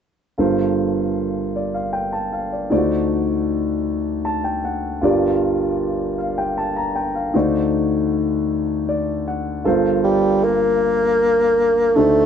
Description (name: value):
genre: gospel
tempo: 52 BPM (dotted quarters)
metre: 6/8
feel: straight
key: G minor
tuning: A4 = 440 Hz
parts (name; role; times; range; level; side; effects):
- dark concert grand piano; accompaniment; 0.4-12.3 s; G1 to Bb5; -18 LUFS; equal; none
- mellow bassoon; melody; 10.0-12.3 s; G3 to Bb3; -15 LUFS; equal; none
room: wet small room reverb, RT60 0.5 s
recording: band playing live in one room, nothing above 8.0 kHz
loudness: -17 LUFS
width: side -8 dB against mid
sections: 0.4-9.7 A section; 9.7-12.3 B section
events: grand piano fill 3.9-5.0, 8.5-9.7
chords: 0.4 Gm11; 2.7 D7b9; 5.0 Gm7; 7.3 D7b9; 9.7 Gm11